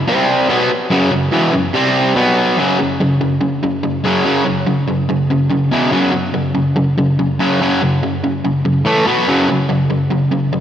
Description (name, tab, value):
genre	rock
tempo	143 BPM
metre	4/4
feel	straight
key	unclear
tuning	A4 = 440 Hz
part	overdriven semi-hollow guitar	solo	0.0-10.6 s	E2 to C4	-13 LUFS	equal	none
room	wet lush hall reverb, RT60 2.1 s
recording	big arena sound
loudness	-13 LUFS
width	side -10 dB against mid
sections	0.0-2.6 A section; 2.6-10.6 B section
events	none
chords	0.1 C5; 0.5 F#5; 1.7 C5; 2.2 B5; 2.6 F#5; 5.7 E5; 5.9 F#5; 8.9 A5; 9.1 B5; 9.3 F#5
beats	0.08 0.49 | 0.91 1.33 1.75 2.16 | 2.58 3.00 3.42 3.84 | 4.25 4.67 5.09 5.51 | 5.93 6.35 6.77 7.18 | 7.60 8.02 8.44 8.86 | 9.28 9.70 10.11 10.53